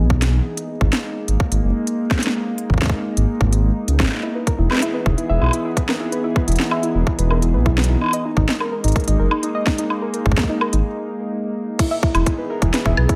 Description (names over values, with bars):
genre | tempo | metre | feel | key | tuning
IDM | 127 BPM | 4/4 | straight | E lydian | A4 = 440 Hz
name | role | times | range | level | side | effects
warbly tape-like pad | sustained chords | 0.0-13.2 s | E3 to G#4 | -27 LUFS | equal | chorus, built-in reverb, vintage 12-bit sampler grit
dark detuned saw bass | bass | 0.0-13.1 s | E1 to C#2 | -20 LUFS | equal | none
electronic kick drum | drums | 0.1-13.2 s | none | -22 LUFS | equal | overdrive
organic electronic drum kit | drums | 0.2-13.2 s | crash cymbal, hi-hat, snare drum, woodblock | -25 LUFS | equal | overdrive
warbly dusty pluck | arpeggios | 4.2-13.2 s | D#4 to E5 | -27 LUFS | equal | chorus, digital delay
room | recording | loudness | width
digital ambience | none | -19 LUFS | mono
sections
0.0-11.8 A section; 11.8-13.2 B section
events
break 10.8-11.8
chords
0.5 G#sus2; 4.2 Emaj7; 8.0 G#sus2; 11.8 Emaj7